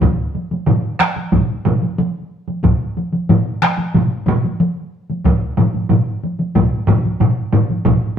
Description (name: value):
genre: japanese traditional, taiko drum ensemble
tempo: 92 BPM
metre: 4/4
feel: straight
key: none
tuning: none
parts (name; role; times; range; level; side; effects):
- taiko ensemble; percussion; 0.0-8.0 s; none; -19 LUFS; equal; none
- taiko ensemble; percussion; 0.0-8.0 s; none; -18 LUFS; left 2 dB; none
- taiko ensemble; percussion; 0.0-8.0 s; none; -19 LUFS; right 2 dB; none
- taiko ensemble; percussion; 0.0-8.0 s; none; -21 LUFS; equal; none
room: wet stone room reverb, RT60 1.0 s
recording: band playing live in one room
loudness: -14 LUFS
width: side -8 dB against mid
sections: 0.0-8.2 A section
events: none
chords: none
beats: | 0.01 0.67 1.33 1.98 | 2.64 3.29 3.95 4.60 | 5.25 5.91 6.56 7.21 | 7.86